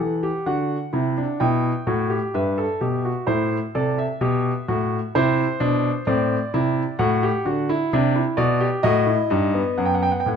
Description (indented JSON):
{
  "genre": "classical, baroque-style 3-part fugue for grand piano",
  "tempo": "64 BPM",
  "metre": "4/4",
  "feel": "straight",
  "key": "unclear",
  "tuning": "A4 = 440 Hz",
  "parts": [
    { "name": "warm concert grand piano", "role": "solo", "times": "0.0-10.4 s", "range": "F#2 to G5", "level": "-19 LUFS", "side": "equal", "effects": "none" }
  ],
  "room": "light reverb",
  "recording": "close, detailed microphones",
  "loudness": "-19 LUFS",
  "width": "side -7 dB against mid",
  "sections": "0.0-10.4 A section",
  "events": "none",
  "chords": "0.0 Bm (rootless); 1.4 Em; 3.3 Am; 5.2 D5; 7.0 F#dim/A; 8.8 B7",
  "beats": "0.47 1.41 2.35 | 3.29 4.22 5.15 6.07 | 6.99 7.91 8.84 9.77"
}